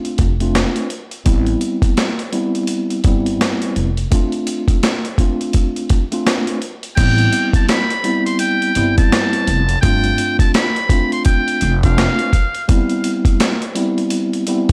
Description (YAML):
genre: hip hop, boom-bap hip-hop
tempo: 84 BPM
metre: 4/4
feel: swing 60% on 16ths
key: A minor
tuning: A4 = 440 Hz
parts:
  - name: mellow tine electric piano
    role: accompaniment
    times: 0.0-14.7 s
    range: G3 to F4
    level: -22 LUFS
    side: equal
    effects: cassette tape, high-pass filter, low-pass filter
  - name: boom bap sampler-style drum kit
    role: drums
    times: 0.0-14.7 s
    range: crash cymbal, hi-hat, kick drum, snare drum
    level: -19 LUFS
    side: equal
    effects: none
  - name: upright bass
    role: bass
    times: 0.2-12.1 s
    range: F1 to A1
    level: -21 LUFS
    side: equal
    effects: transformer saturation
  - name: trumpet with metal mute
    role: melody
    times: 7.0-12.7 s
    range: F5 to C6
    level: -22 LUFS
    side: equal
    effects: high-pass filter, low-pass filter, analog delay
room: little or no reverb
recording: dry, gritty hardware recording, vinyl crackle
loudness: -17 LUFS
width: mono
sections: 0.0-7.0 A section; 7.0-14.7 B section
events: none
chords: 0.0 G7sus4 (rootless); 1.3 Am9 (rootless); 4.1 F6/A; 7.0 Am9; 9.8 G7sus4; 12.7 Cmaj7/G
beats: 0.55 | 1.26 1.97 2.69 3.40 | 4.12 4.83 5.54 6.26 | 6.97 7.69 8.40 9.12 | 9.83 10.54 11.26 11.97 | 12.69 13.40 14.12